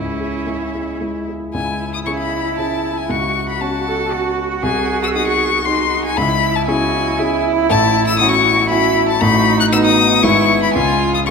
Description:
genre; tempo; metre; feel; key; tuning
quick classical-period movement for piano quartet; 117 BPM; 3/4; straight; C# minor; A4 = 439 Hz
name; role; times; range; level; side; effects
rich violin; melody; 0.0-11.3 s; E5 to F#6; -18 LUFS; left 8 dB; none
rich cello; second line; 0.0-11.3 s; C#4 to A4; -21 LUFS; right 6 dB; none
dark grand piano; accompaniment; 0.0-11.3 s; G#1 to G#4; -19 LUFS; left 1 dB; none
rich viola; accompaniment; 0.0-11.3 s; D#4 to F#4; -24 LUFS; right 3 dB; none
room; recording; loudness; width
moderate concert hall reverb, RT60 1.9 s; none; -14 LUFS; side -5 dB against mid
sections
0.0-1.5 A section; 1.5-11.3 A section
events
none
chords
0.0 C#m; 3.1 F#m/C#; 4.6 G#7/B#; 6.2 C#m; 7.7 F#m7/A; 9.2 B7/A; 10.2 E/G#; 10.8 C#

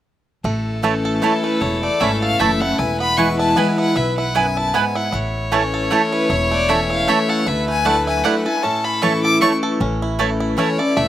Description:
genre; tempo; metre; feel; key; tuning
bluegrass; 154 BPM; 3/4; swing 55% on 8ths; A major; A4 = 440 Hz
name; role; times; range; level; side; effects
bluegrass banjo; melody; 0.4-11.1 s; E3 to A4; -25 LUFS; right 4 dB; slapback echo
clear fiddle; second line; 0.4-9.6 s; A4 to C#5; -26 LUFS; left 2 dB; slapback echo
picked steel-string acoustic guitar; accompaniment; 0.4-11.1 s; E2 to E4; -21 LUFS; left 2 dB; slapback echo
upright bass; bass; 0.4-11.1 s; E1 to D2; -24 LUFS; equal; none
mandolin; stabs; 0.8-10.7 s; A3 to A5; -20 LUFS; right 7 dB; slapback echo
clear fiddle; melody; 1.2-11.1 s; A4 to D6; -21 LUFS; left 3 dB; slapback echo
room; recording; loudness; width
little or no reverb; recorded outdoors, with no room sound; -16 LUFS; side -12 dB against mid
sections
0.4-9.8 A section; 9.8-11.1 B section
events
none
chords
0.4 A; 2.8 E; 5.1 A; 7.5 Dadd9; 8.6 A

